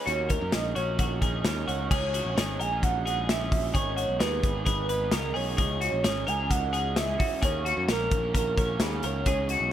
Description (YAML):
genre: jangly indie pop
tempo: 130 BPM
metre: 4/4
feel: straight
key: C# dorian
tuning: A4 = 436 Hz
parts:
  - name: warm velvety synth lead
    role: melody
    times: 0.0-9.7 s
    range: G#4 to G#5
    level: -31 LUFS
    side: right 2 dB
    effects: chorus
  - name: raw garage guitar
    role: accompaniment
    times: 0.0-9.7 s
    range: G#2 to A#4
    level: -35 LUFS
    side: right 7 dB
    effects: overdrive
  - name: twelve-string electric guitar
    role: arpeggios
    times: 0.0-9.7 s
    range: F#4 to C#5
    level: -32 LUFS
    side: left 4 dB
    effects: none
  - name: modern bright picked electric bass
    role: bass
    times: 0.1-9.7 s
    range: G#1 to F#2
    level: -32 LUFS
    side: equal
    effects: none
  - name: modern studio drum kit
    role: drums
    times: 0.1-9.6 s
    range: crash cymbal, hi-hat, kick drum, snare drum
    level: -29 LUFS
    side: left 1 dB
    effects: none
room: little or no reverb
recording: none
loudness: -24 LUFS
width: side -11 dB against mid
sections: 0.0-1.9 A section; 1.9-9.7 B section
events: none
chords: 0.1 D#m7; 1.9 C#madd9; 3.7 G#m; 5.6 C#madd9; 7.4 D#m7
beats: | 0.07 0.53 0.99 1.45 | 1.91 2.37 2.83 3.29 | 3.75 4.21 4.67 5.13 | 5.59 6.05 6.50 6.96 | 7.42 7.88 8.35 8.80 | 9.26